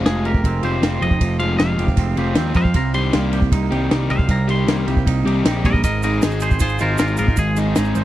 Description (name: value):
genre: indie rock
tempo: 156 BPM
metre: 4/4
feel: straight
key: F minor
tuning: A4 = 440 Hz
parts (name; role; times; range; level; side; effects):
- crunchy overdriven guitar; riff; 0.0-8.0 s; Eb3 to Ab4; -26 LUFS; left 7 dB; spring reverb
- twangy electric guitar; riff; 0.0-8.0 s; C3 to C5; -25 LUFS; right 7 dB; lush chorus, tape echo
- fuzz picked electric bass; bass; 0.0-8.0 s; F1 to F2; -20 LUFS; equal; overdrive
- twangy electric guitar; melody; 0.1-7.6 s; F4 to C6; -25 LUFS; equal; tape echo
- compact cocktail drum kit; drums; 0.1-8.0 s; kick drum, ride cymbal, snare drum; -20 LUFS; equal; none
- tube shaker; percussion; 5.8-8.0 s; none; -35 LUFS; right 12 dB; none
room: little or no reverb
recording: dry, close 1970s-style studio recording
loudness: -16 LUFS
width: side -14 dB against mid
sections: 0.0-8.0 A section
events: clean electric guitar solo 0.0-8.0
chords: 0.0 Fmadd9; 2.8 Cm7; 5.8 Ab6